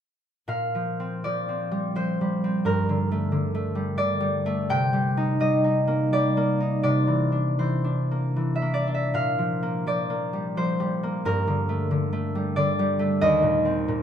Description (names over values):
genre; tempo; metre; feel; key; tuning
classical, solo harp piece; 77-93 BPM; 3/4; rubato; Bb major; A4 = 439 Hz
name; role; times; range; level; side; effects
concert harp; solo; 0.5-14.0 s; Eb2 to G5; -22 LUFS; equal; none
room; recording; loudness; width
moderate large studio reverb, RT60 1.5 s; none; -22 LUFS; side -9 dB against mid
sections
0.5-14.0 A section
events
none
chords
0.5 Bb69; 2.7 Gmadd9; 4.7 Cm7; 6.9 C9; 9.1 Bb69; 11.2 Gmadd9; 13.2 Eb6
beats
| 0.49 1.23 1.96 | 2.66 3.31 3.97 | 4.70 5.41 6.13 | 6.87 7.61 8.37 | 9.13 9.87 10.56 | 11.24 11.89 12.55 | 13.20 13.87